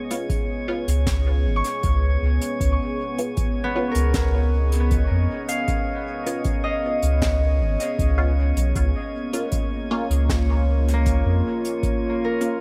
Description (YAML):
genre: ambient dub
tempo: 78 BPM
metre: 4/4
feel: straight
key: Db mixolydian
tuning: A4 = 440 Hz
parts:
  - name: deep dark ambient pad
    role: sustained chords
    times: 0.0-12.6 s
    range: Bb3 to Eb5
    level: -32 LUFS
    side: equal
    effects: chorus, built-in reverb
  - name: drifting glass-harmonics texture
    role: texture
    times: 0.0-12.6 s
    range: Db4 to Db5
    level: -34 LUFS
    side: equal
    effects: chorus, built-in reverb
  - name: filtered dub chord stab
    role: stabs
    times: 0.1-12.6 s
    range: Bb3 to F4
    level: -34 LUFS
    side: equal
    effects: phaser, analog chorus, dub echo
  - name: soft brush drum kit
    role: drums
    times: 0.1-12.6 s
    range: hi-hat, snare drum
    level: -34 LUFS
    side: equal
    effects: dub echo
  - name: electronic kick drum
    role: drums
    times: 0.3-12.0 s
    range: none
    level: -29 LUFS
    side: equal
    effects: none
  - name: soft dub sub bass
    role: bass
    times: 0.9-11.4 s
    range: Ab1 to F2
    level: -22 LUFS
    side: equal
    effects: none
  - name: concert harp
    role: arpeggios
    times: 1.6-12.6 s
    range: Bb3 to Db6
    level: -32 LUFS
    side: equal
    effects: dub echo
room: light reverb, small room ambience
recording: none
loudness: -22 LUFS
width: mono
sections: 0.0-12.6 A section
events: none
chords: 0.0 Db7; 8.8 Bbm